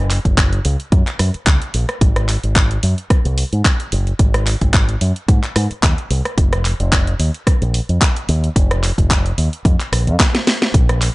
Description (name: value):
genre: nu-disco, nu disco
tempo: 110 BPM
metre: 4/4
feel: swing 55% on 16ths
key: unclear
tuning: A4 = 442 Hz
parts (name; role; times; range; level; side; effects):
- fingered electric bass with an envelope filter; bass; 0.0-11.1 s; F1 to Ab2; -17 LUFS; equal; none
- house drum kit; drums; 0.1-11.1 s; handclaps, hi-hat, rim click, snare drum; -20 LUFS; equal; none
- electronic kick drum; drums; 0.3-10.9 s; none; -14 LUFS; equal; none
room: little or no reverb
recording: dry, gritty hardware recording, nothing above 10.4 kHz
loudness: -14 LUFS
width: side -21 dB against mid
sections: 0.0-11.1 A section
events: drum fill 10.2-10.7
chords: none